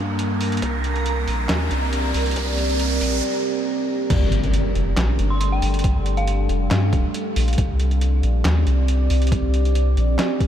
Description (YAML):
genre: deep dubstep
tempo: 138 BPM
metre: 4/4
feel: swing 53% on 16ths, half-time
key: G minor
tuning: A4 = 440 Hz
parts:
  - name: deep dark ambient pad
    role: sustained chords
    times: 0.0-10.5 s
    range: G3 to A5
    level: -25 LUFS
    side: right 1 dB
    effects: chorus, built-in reverb
  - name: soft dub sub bass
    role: bass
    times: 0.0-10.2 s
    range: D1 to G2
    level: -20 LUFS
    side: equal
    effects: none
  - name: riser and impact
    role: sound effects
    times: 0.0-5.8 s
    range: none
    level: -27 LUFS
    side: equal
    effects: none
  - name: backwards swelling texture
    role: texture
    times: 0.0-3.2 s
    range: Bb3 to Bb4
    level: -30 LUFS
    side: right 2 dB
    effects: built-in reverb, lush chorus
  - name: trip hop sampler-style drum kit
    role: drums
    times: 0.2-10.5 s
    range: crash cymbal, handclaps, hi-hat, snare drum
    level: -29 LUFS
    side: equal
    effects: overdrive
  - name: electronic kick drum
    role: drums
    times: 0.6-10.5 s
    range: none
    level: -21 LUFS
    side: equal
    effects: overdrive, high-pass filter on kick, high-pass filter on room
  - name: dark detuned synth bell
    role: melody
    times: 5.3-6.5 s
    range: F5 to C6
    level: -33 LUFS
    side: right 1 dB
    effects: chorus, dub echo
room: light reverb, digital ambience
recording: none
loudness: -18 LUFS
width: side -10 dB against mid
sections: 0.0-4.1 A section; 4.1-10.5 B section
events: build-up 0.0-4.1; riser 0.0-3.2; break 3.2-4.1; drop 4.1-10.5; impact 4.1-5.8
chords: 0.0 Gmadd9; 0.6 C5; 4.1 Gsus2; 7.6 C5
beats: 0.19 | 0.62 1.06 1.49 1.93 | 2.36 2.80 3.23 3.67 | 4.10 4.54 4.97 5.41 | 5.84 6.28 6.71 7.14 | 7.58 8.02 8.45 8.88 | 9.32 9.75 10.19